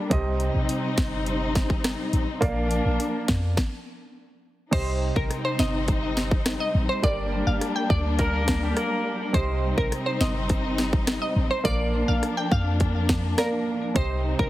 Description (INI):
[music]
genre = dancehall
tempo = 104 BPM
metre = 4/4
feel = straight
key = C minor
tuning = A4 = 441 Hz
[part]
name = warm baby grand piano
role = accompaniment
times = 0.0-14.5 s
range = C3 to F5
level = -31 LUFS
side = right 3 dB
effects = sidechain pumping
[part]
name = warm studio string section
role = sustained chords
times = 0.0-14.5 s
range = F3 to Eb4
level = -29 LUFS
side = left 2 dB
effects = none
[part]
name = clean 808-style bass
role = bass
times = 0.1-14.5 s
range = G1 to F2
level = -26 LUFS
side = equal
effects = none
[part]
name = island pop drum kit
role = drums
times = 0.1-14.5 s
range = crash cymbal, hi-hat, kick drum, rim click, snare drum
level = -26 LUFS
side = equal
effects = none
[part]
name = glassy wavetable pluck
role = melody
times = 4.7-14.5 s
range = Bb4 to G5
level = -29 LUFS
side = equal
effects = chorus, tape echo
[part]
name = warm horn section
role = second line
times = 8.2-9.2 s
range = G3 to Bb4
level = -29 LUFS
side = left 1 dB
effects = tape echo
[sound]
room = light reverb, small room ambience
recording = heavily compressed radio sound, multiband compression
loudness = -22 LUFS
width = side -15 dB against mid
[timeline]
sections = 0.0-4.7 A section; 4.7-14.5 B section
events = stop 3.6-4.7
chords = 0.1 Cm; 2.4 Bb; 4.7 Cm; 7.0 Gm; 9.3 Cm; 11.7 Bb; 14.0 Cm